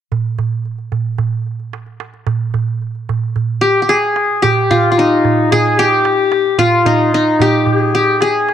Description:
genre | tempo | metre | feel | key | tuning
Turkish makam ensemble | 111 BPM | 4/4 | straight | unclear | A4 = 440 Hz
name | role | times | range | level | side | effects
darbuka | percussion | 0.1-8.5 s | none | -18 LUFS | right 5 dB | none
qanun | melody | 3.6-8.5 s | Eb4 to Ab4 | -12 LUFS | equal | none
warm clarinet | second line | 3.6-8.5 s | Eb4 to Ab4 | -19 LUFS | left 11 dB | none
room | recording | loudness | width
moderate spring reverb, RT60 2.0 s, small room ambience | 1960s-style stereo | -12 LUFS | side -9 dB against mid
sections
0.1-4.4 A section; 4.4-8.5 B section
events
none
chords
none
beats
| 0.12 0.66 1.20 1.74 | 2.28 2.82 3.36 3.90 | 4.43 4.97 5.51 6.05 | 6.59 7.13 7.67 8.21

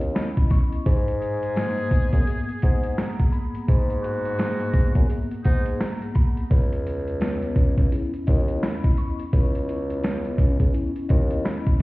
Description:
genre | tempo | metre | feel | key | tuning
hip hop, boom-bap hip-hop | 85 BPM | 4/4 | swing 61% on 16ths | G# minor | A4 = 440 Hz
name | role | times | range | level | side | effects
mellow tine electric piano | accompaniment | 0.0-11.8 s | E2 to C#6 | -28 LUFS | left 1 dB | medium stereo tremolo, cassette tape
warm bassoon | bass | 0.0-11.5 s | C#2 to G#2 | -27 LUFS | equal | none
boom bap sampler-style drum kit | drums | 0.0-11.8 s | hi-hat, kick drum, snare drum | -21 LUFS | equal | none
trumpet with metal mute | melody | 1.2-5.6 s | D#4 to G#4 | -36 LUFS | equal | tape echo
room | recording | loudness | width
small room ambience | heard muffled through a wall, stone room reverb, vinyl crackle, EQ | -20 LUFS | side -20 dB against mid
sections
0.0-11.8 A section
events
none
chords
0.0 C#m9; 0.9 G#m9; 6.5 C#m9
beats
0.15 | 0.86 1.57 2.27 2.98 | 3.68 4.39 5.09 5.80 | 6.51 7.21 7.92 8.62 | 9.33 10.04 10.74 11.45

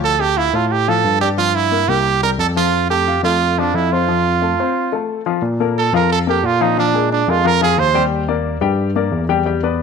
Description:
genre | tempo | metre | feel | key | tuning
jazz | 178 BPM | 4/4 | straight | F major, Bb major from 5.4 s | A4 = 440 Hz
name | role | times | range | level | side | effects
bright trumpet | melody | 0.0-8.0 s | D4 to C5 | -16 LUFS | right 9 dB | none
dark baby grand piano | accompaniment | 0.0-9.8 s | F3 to G5 | -20 LUFS | left 11 dB | none
barky tine electric piano | bass | 0.0-9.8 s | C2 to Bb2 | -20 LUFS | left 1 dB | none
room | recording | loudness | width
moderate echo chamber reverb, RT60 1.3 s, small room ambience | 1960s-style stereo with parts hard left and right | -14 LUFS | side -6 dB against mid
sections
0.0-5.4 A section; 5.4-9.8 B section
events
none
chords
0.0 Dmadd11; 1.4 C5; 2.7 F; 5.4 Bb5; 6.8 Bb6; 8.1 Ebmaj7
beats
| 0.03 0.37 0.71 1.05 | 1.38 1.72 2.06 2.40 | 2.73 3.07 3.41 3.75 | 4.08 4.42 4.76 5.09 | 5.43 5.77 6.10 6.44 | 6.78 7.11 7.45 7.78 | 8.12 8.46 8.79 9.13 | 9.46 9.80

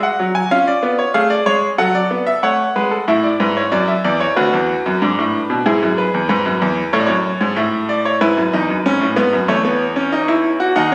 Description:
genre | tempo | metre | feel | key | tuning
classical, baroque-style 4-part fugue for grand piano | 94 BPM | 4/4 | straight | F# minor, A major from 3.1 s | A4 = 440 Hz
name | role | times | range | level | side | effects
bright grand piano | solo | 0.0-10.9 s | D2 to G#5 | -16 LUFS | equal | none
room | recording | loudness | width
moderate recital hall reverb, RT60 1.4 s | recorded on a phone in the room, studio reverb, compression | -16 LUFS | mono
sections
0.0-3.1 A section; 3.1-10.9 B section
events
none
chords
0.0 N.C.; 0.5 C#; 1.8 F#m; 3.1 A; 4.4 Bm7/D; 5.7 E; 6.9 A; 8.2 E; 9.5 F#7(no3)/E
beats
| 0.50 1.14 1.79 2.43 | 3.08 3.73 4.37 5.01 | 5.66 6.30 6.93 7.57 | 8.22 8.85 9.49 10.13 | 10.77

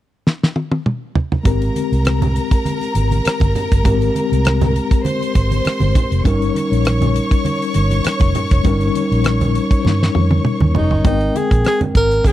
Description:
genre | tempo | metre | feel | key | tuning
lush 1970s-style soul | 100 BPM | 4/4 | swing 54% on 16ths | Ab major | A4 = 440 Hz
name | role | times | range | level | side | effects
damped 70s drum kit | drums | 0.3-12.3 s | hi-hat, kick drum, rim click, snare drum, toms | -17 LUFS | equal | none
bright studio violin section | second line | 1.4-12.3 s | Eb4 to Db6 | -24 LUFS | left 1 dB | none
mellow tine electric piano | accompaniment | 1.4-12.3 s | G3 to G5 | -20 LUFS | left 4 dB | medium stereo tremolo
vintage muted fingered electric bass | bass | 1.5-12.2 s | F1 to G2 | -17 LUFS | equal | none
congas | percussion | 1.5-12.3 s | none | -24 LUFS | right 4 dB | none
breathy tenor saxophone | melody | 10.8-12.3 s | Eb4 to Bb4 | -18 LUFS | right 1 dB | none
room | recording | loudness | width
small room ambience | dry, close 1970s-style studio recording | -14 LUFS | side -13 dB against mid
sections
0.0-1.5 A section; 1.5-11.1 B section; 11.1-12.3 C section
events
drum fill 0.3-1.5, 9.8-11.1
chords
0.0 N.C.; 1.5 Abmaj9; 6.2 Eb7; 11.1 Abmaj9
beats
0.25 0.85 | 1.45 2.05 2.65 3.25 | 3.85 4.45 5.05 5.65 | 6.25 6.85 7.45 8.05 | 8.65 9.25 9.85 10.45 | 11.05 11.65 12.25

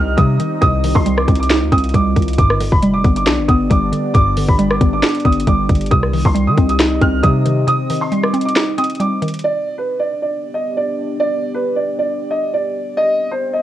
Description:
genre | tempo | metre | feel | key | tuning
hip hop, trap | 136 BPM | 4/4 | half-time | C harmonic minor | A4 = 443 Hz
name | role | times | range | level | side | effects
dark grand piano | melody | 0.0-13.6 s | B4 to F6 | -19 LUFS | right 2 dB | cassette tape
mallet-like synth pluck | accompaniment | 0.0-9.4 s | G2 to Eb4 | -18 LUFS | equal | chorus, phaser, cassette tape
deep dark ambient pad | sustained chords | 0.0-13.6 s | B3 to Eb5 | -24 LUFS | left 1 dB | chorus, built-in reverb, cassette tape
hard-hitting 808-style bass | bass | 0.0-7.7 s | F1 to Eb3 | -18 LUFS | equal | none
trap drum kit | drums | 0.2-9.4 s | finger snaps, hi-hat, kick drum, rim click, snare drum | -16 LUFS | equal | cassette tape
swell | sound effects | 13.3-13.6 s | none | -36 LUFS | right 3 dB | none
room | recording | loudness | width
digital ambience | home recording on cassette | -13 LUFS | side -12 dB against mid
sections
0.0-9.4 A section; 9.4-13.6 B section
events
break 7.7-9.4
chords
0.0 Cm; 2.4 G; 5.9 Cm; 9.4 G; 13.0 Cm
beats
0.18 | 0.62 1.06 1.50 1.94 | 2.38 2.82 3.27 3.71 | 4.15 4.59 5.03 5.47 | 5.91 6.35 6.79 7.24 | 7.68 8.12 8.56 9.00 | 9.44 9.88 10.32 10.77 | 11.21 11.65 12.09 12.53 | 12.97 13.41

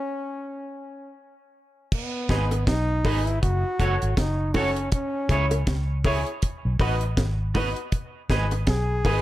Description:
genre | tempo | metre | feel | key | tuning
roots reggae | 80 BPM | 4/4 | swing 58% on 16ths | unclear | A4 = 440 Hz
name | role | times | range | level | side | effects
bright trombone | melody | 0.0-9.2 s | B3 to G#4 | -29 LUFS | equal | dub echo, plate reverb
deep reggae drum kit | drums | 1.9-9.2 s | crash cymbal, hi-hat, kick drum, snare drum | -26 LUFS | equal | none
electric guitar at the edge of break-up | accompaniment | 2.3-9.2 s | E4 to D#5 | -31 LUFS | right 5 dB | spring reverb, dub echo, plate reverb
bright concert grand piano | stabs | 2.3-9.2 s | D#4 to C#5 | -31 LUFS | left 4 dB | plate reverb
vintage muted fingered electric bass | bass | 2.3-9.2 s | F#1 to C#2 | -25 LUFS | equal | none
bongos | percussion | 2.3-9.2 s | none | -32 LUFS | equal | none
room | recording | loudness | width
light reverb | none | -22 LUFS | side -15 dB against mid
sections
0.0-1.9 A section; 1.9-9.2 B section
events
stop 0.0-1.9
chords
0.0 N.C.; 1.9 G#m; 3.4 F#m; 4.9 C#m; 6.4 B; 7.9 G#m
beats
0.42 1.17 | 1.92 2.67 3.42 4.17 | 4.92 5.67 6.42 7.17 | 7.92 8.67

